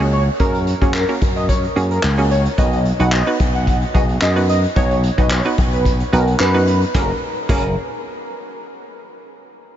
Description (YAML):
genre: dance-pop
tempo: 110 BPM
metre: 4/4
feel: straight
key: F# major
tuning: A4 = 440 Hz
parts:
  - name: hollow square pluck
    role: accompaniment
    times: 0.0-7.7 s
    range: A#3 to C#5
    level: -23 LUFS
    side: right 3 dB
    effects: chorus, sidechain pumping
  - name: slap bass with an envelope filter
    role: bass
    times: 0.0-7.7 s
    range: F#1 to F#2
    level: -18 LUFS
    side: equal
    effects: sidechain pumping
  - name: octave-doubled lead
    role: melody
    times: 0.1-7.7 s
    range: A#4 to F#5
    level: -22 LUFS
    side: equal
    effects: chorus, sidechain pumping, tape echo
  - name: vintage brush drum kit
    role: drums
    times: 0.4-7.6 s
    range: crash cymbal, handclaps, hi-hat, kick drum, snare drum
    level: -20 LUFS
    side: equal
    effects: none
room: light reverb, small room ambience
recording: nothing above 7.7 kHz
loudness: -14 LUFS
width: side -11 dB against mid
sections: 0.0-6.9 A section; 6.9-9.1 B section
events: none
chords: 0.0 F#add9; 2.6 B; 6.9 F#add9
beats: | 0.40 0.94 1.49 2.04 | 2.58 3.13 3.67 4.22 | 4.76 5.31 5.85 6.40 | 6.95 7.49